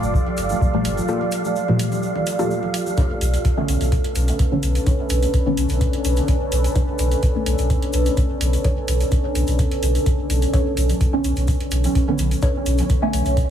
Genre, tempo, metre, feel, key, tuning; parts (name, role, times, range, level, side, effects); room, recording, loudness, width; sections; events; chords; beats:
dub techno; 127 BPM; 4/4; straight; A4 = 440 Hz
deep dark ambient pad; sustained chords; 0.0-13.5 s; C#4 to D5; -25 LUFS; right 1 dB; chorus, built-in reverb, sidechain pumping
deep mellow chord stab; stabs; 0.0-7.6, 11.1-13.3 s; Bb2 to C#4; -25 LUFS; equal; chorus, phaser, sidechain pumping, dub echo
pure sine sub bass; bass; 0.0-13.4 s; G1 to B1; -20 LUFS; equal; tube saturation, sidechain pumping
congas; percussion; 0.0-3.0, 10.9-13.2 s; -30 LUFS; right 2 dB; overdrive, sidechain pumping on perc, dub echo
tube shaker; percussion; 0.0-13.5 s; -34 LUFS; left 4 dB
wind-like tuned noise texture; texture; 0.0-3.0 s; F5; -31 LUFS; right 6 dB; built-in reverb, sidechain pumping
electronic kick drum; drums; 0.1-13.5 s; -20 LUFS; equal
electronic hi-hat; drums; 0.4-13.5 s; -33 LUFS; right 2 dB
warbly dusty pluck; riff; 1.1-12.5 s; Bb3 to C#5; -30 LUFS; left 3 dB; chorus, sidechain pumping, dub echo
light reverb, digital ambience; heavily compressed radio sound, small room ambience; -18 LUFS; side -9 dB against mid
0.0-3.0 A section; 3.0-13.5 A section
filter sweep on synth stab 0.0-3.0, 3.0-13.5
0.0 Gm9; 3.0 Bm9
0.14 0.61 | 1.09 1.56 2.03 2.50 | 2.98 3.45 3.92 4.39 | 4.87 5.34 5.81 6.28 | 6.76 7.23 7.70 8.17 | 8.64 9.12 9.59 10.06 | 10.54 11.01 11.48 11.95 | 12.43 12.90 13.37